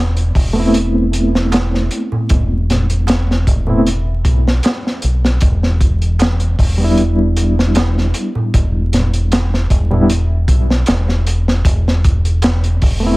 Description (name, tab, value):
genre	trip hop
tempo	77 BPM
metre	4/4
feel	swing 53% on 16ths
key	E minor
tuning	A4 = 440 Hz
part	deep dub fingered electric bass	bass	0.0-13.2 s	E1 to B1	-15 LUFS	equal	tube saturation
part	crunchy breakbeat drum kit	drums	0.2-13.0 s	hi-hat, kick drum, snare drum	-16 LUFS	equal	vintage 12-bit sampler grit
part	reed electric piano	accompaniment	0.5-13.2 s	G3 to E4	-18 LUFS	equal	overdrive, fast tremolo, tape echo
part	darbuka	percussion	1.5-12.6 s	none	-23 LUFS	right 1 dB	none
room	small room reverb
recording	vinyl crackle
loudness	-12 LUFS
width	side -21 dB against mid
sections	0.0-13.2 A section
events	none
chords	0.0 Amadd9/E; 5.4 Em7; 11.6 N.C.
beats	0.74 1.52 | 2.30 3.08 3.86 4.63 | 5.41 6.19 6.97 7.75 | 8.53 9.31 10.09 10.87 | 11.65 12.43